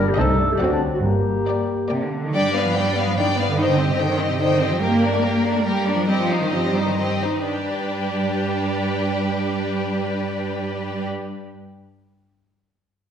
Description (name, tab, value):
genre	quick classical-period movement for symphony orchestra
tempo	121-147 BPM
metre	3/4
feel	rubato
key	unclear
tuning	A4 = 439 Hz
part	rich chamber violin section	melody	0.0-11.1 s	Bb4 to A5	-29 LUFS	left 5 dB	none
part	mellow clarinet	second line	0.0-2.1 s	D4 to Bb4	-24 LUFS	left 1 dB	none
part	rich chamber violin section	second line	0.0-11.1 s	Eb4 to Eb5	-26 LUFS	left 1 dB	none
part	rich chamber viola section	accompaniment	0.0-11.1 s	Bb3 to Eb4	-26 LUFS	equal	none
part	warm French horn section	sustained chords	0.0-2.1 s	F#3 to Eb4	-25 LUFS	left 3 dB	none
part	rich studio double bass section	bass	0.0-11.1 s	G1 to G2	-28 LUFS	right 2 dB	none
part	warm studio cello section	bass	0.0-11.1 s	G2 to Bb3	-24 LUFS	right 2 dB	none
room	wet recital hall reverb, RT60 1.3 s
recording	recorded in a church or concert hall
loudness	-19 LUFS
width	side -8 dB against mid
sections	0.0-2.3 A section; 2.3-7.5 B section; 7.5-10.3 C section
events	slowing down 4.2-7.5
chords	0.2 Adim/C; 0.6 D7; 1.0 Gm; 2.3 G7; 3.6 Cm/G; 4.8 Gm; 6.1 Cm/G; 7.5 G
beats	0.18 0.60 | 1.03 1.47 1.90 | 2.33 2.75 3.17 | 3.58 3.99 4.40 | 4.81 5.23 5.65 | 6.08 6.53 6.99 | 7.47 7.94 8.41 | 8.88 9.36 9.83